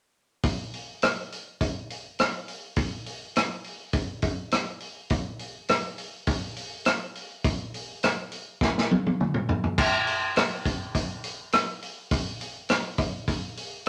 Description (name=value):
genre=rock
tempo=103 BPM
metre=4/4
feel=straight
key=none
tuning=none
part: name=vintage drum kit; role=drums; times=0.4-13.9 s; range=crash cymbal, hi-hat, kick drum, rim click, snare drum, toms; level=-28 LUFS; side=equal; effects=none
room=moderate studio reverb, RT60 0.6 s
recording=none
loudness=-28 LUFS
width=mono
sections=0.4-9.8 A section; 9.8-13.9 B section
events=drum fill 8.6-9.8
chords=none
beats=| 0.44 1.02 1.61 2.19 | 2.77 3.36 3.94 4.53 | 5.11 5.70 6.28 6.87 | 7.45 8.03 8.62 9.20 | 9.79 10.37 10.95 11.54 | 12.12 12.70 13.28 13.87